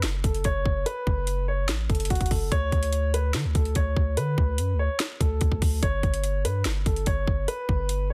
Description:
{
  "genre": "hip hop, trap",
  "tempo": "145 BPM",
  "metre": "4/4",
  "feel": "half-time",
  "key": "unclear",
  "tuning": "A4 = 440 Hz",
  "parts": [
    { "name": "long sustained 808-style bass", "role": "bass", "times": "0.0-8.1 s", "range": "F#1 to D3", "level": "-29 LUFS", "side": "equal", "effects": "none" },
    { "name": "trap drum kit", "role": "drums", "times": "0.0-8.0 s", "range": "hi-hat, kick drum, snare drum", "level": "-28 LUFS", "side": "equal", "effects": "none" },
    { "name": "dark concert grand piano", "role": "melody", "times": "0.2-8.1 s", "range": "F#4 to C#5", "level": "-33 LUFS", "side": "equal", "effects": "low-pass filter, digital delay" }
  ],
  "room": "digital ambience",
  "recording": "dense, heavily limited modern master",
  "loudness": "-25 LUFS",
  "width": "mono",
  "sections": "0.0-8.1 A section",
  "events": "none",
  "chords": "0.0 F#m; 2.5 Dmaj7(no3); 5.8 G"
}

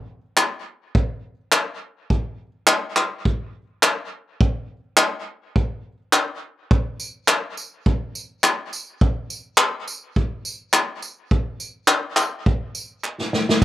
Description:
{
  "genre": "pop",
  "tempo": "104 BPM",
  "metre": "4/4",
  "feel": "swing 55% on 16ths",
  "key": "none",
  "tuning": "none",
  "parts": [
    { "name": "unplugged drum kit", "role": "drums", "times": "0.4-13.6 s", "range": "crash cymbal, handclaps, kick drum, snare drum, tambourine", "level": "-18 LUFS", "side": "equal", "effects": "none" },
    { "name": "group handclap", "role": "percussion", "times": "5.0-13.2 s", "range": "none", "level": "-30 LUFS", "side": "right 2 dB", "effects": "none" }
  ],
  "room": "little or no reverb",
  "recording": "none",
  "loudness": "-20 LUFS",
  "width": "side -14 dB against mid",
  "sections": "0.0-13.6 A section",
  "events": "drum fill 13.0-13.6",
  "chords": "none"
}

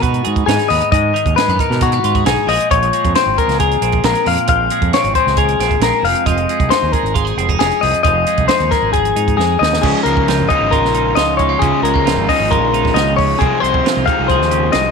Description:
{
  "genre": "math rock and midwest emo",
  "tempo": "135 BPM",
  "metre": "4/4",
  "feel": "straight",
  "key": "Db major",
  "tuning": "A4 = 440 Hz",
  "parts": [
    { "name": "twelve-string electric guitar", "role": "accompaniment", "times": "0.0-14.9 s", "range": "F2 to Bb4", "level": "-20 LUFS", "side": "right 14 dB", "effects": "wide subtle chorus" },
    { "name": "clean electric guitar", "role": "arpeggios", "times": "0.0-14.9 s", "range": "Gb4 to F5", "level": "-15 LUFS", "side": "left 9 dB", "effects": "none" },
    { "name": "growling fingered electric bass", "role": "bass", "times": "0.0-14.9 s", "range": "F1 to Cb3", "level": "-20 LUFS", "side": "right 2 dB", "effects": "overdrive" },
    { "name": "compact cocktail drum kit", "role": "drums", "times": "0.0-14.8 s", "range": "crash cymbal, hi-hat, kick drum, snare drum", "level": "-19 LUFS", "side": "right 5 dB", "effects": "none" },
    { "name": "overdriven semi-hollow guitar", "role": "riff", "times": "9.8-14.9 s", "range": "C3 to Db4", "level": "-19 LUFS", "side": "right 2 dB", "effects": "none" }
  ],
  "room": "moderate echo chamber reverb, RT60 1.4 s, studio reverb",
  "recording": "1960s-style stereo with parts hard left and right",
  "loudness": "-12 LUFS",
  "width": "side -5 dB against mid",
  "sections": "0.0-9.8 A section; 9.8-14.9 B section",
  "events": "drum fill 9.4-9.8",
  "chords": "0.0 Abm7; 2.5 Bbm9; 6.0 Fm7; 9.8 Db69; 13.4 Fm7/C"
}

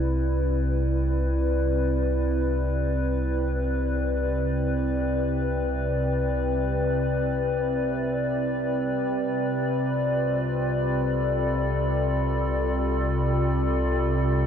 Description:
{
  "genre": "ambient",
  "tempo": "free time",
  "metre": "none",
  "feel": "none",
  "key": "C major",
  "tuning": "A4 = 441 Hz",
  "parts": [
    { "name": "warbly tape-like pad", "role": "sustained chords", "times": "0.0-14.5 s", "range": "C3 to D5", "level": "-24 LUFS", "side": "left 1 dB", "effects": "chorus, built-in reverb" },
    { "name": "deep rumbling drone", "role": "bass", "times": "0.0-14.5 s", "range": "C2", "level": "-28 LUFS", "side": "equal", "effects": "built-in reverb" },
    { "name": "overtone-sweeping drone", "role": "drone", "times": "0.3-14.5 s", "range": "C3 to G3", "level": "-35 LUFS", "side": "equal", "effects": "chorus, built-in reverb" }
  ],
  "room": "wet huge ambient reverb, RT60 7.6 s",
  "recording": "cassette tape",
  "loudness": "-23 LUFS",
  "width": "side -8 dB against mid",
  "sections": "0.0-14.5 A section",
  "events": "fade-in on synth drone 0.0-14.5",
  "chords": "0.0 Cmaj7; 8.9 Dm/C"
}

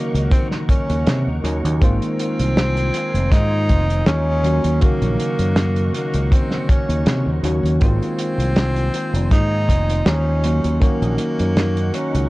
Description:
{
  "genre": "vaporwave",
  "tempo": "80 BPM",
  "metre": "4/4",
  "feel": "swing 54% on 16ths",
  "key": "Ab mixolydian",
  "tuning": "A4 = 440 Hz",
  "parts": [
    { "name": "breathy tenor saxophone", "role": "melody", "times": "0.0-12.3 s", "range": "Bb3 to Eb4", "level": "-24 LUFS", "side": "equal", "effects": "vintage 12-bit sampler grit, tape echo" },
    { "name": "tine electric piano", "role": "accompaniment", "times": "0.0-12.3 s", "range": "Db3 to C5", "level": "-24 LUFS", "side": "equal", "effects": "overdrive, lush chorus, vintage 12-bit sampler grit, tape echo" },
    { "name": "soft string machine", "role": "sustained chords", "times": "0.0-12.3 s", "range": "Eb4 to Db6", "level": "-33 LUFS", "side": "left 1 dB", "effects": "ensemble chorus" },
    { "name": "fingered electric bass", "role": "bass", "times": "0.1-12.3 s", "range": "F1 to C3", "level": "-19 LUFS", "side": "equal", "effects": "none" },
    { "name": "warm soul drum kit", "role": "drums", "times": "0.2-12.3 s", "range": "hi-hat, snare drum", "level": "-24 LUFS", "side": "right 1 dB", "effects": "tape echo" },
    { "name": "kick drum", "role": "drums", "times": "0.3-11.0 s", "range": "none", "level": "-16 LUFS", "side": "equal", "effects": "none" }
  ],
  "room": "light reverb, small room ambience",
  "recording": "echo-heavy mix, cassette tape",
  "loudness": "-16 LUFS",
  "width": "side -20 dB against mid",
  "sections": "0.0-12.3 A section",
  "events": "none",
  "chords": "0.0 Ebm7; 1.8 Ab69; 4.4 Ebm7; 7.8 Ab69; 10.4 Ebm7"
}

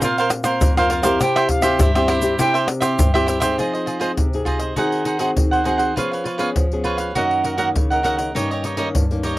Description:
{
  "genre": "samba and choro",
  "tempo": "101 BPM",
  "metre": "4/4",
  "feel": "straight",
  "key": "F minor",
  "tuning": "A4 = 442 Hz",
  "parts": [
    { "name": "cavaquinho", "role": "accompaniment", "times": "0.0-9.4 s", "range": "Eb4 to Gb5", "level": "-20 LUFS", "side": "right 3 dB", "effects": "cassette tape" },
    { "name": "nylon-string guitar", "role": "accompaniment", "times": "0.0-9.4 s", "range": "F2 to Ab4", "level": "-22 LUFS", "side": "left 2 dB", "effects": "cassette tape" },
    { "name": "egg shaker, surdo, pandeiro and tamborim", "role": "percussion", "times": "0.0-9.4 s", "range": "none", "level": "-21 LUFS", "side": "equal", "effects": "none" },
    { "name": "silver concert flute", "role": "second line", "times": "1.2-2.6 s", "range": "E5 to G5", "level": "-22 LUFS", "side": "equal", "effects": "cassette tape" }
  ],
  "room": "light reverb",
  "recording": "home recording on cassette",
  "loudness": "-17 LUFS",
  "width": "side -17 dB against mid",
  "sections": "0.0-3.6 A section; 3.6-9.4 B section",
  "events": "flute solo 0.0-3.6",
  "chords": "0.0 Bbsus2; 1.2 C; 3.6 Fm7; 4.8 Ab7/Eb; 6.0 Db7/F; 7.2 Gb6; 8.4 Eb7/G"
}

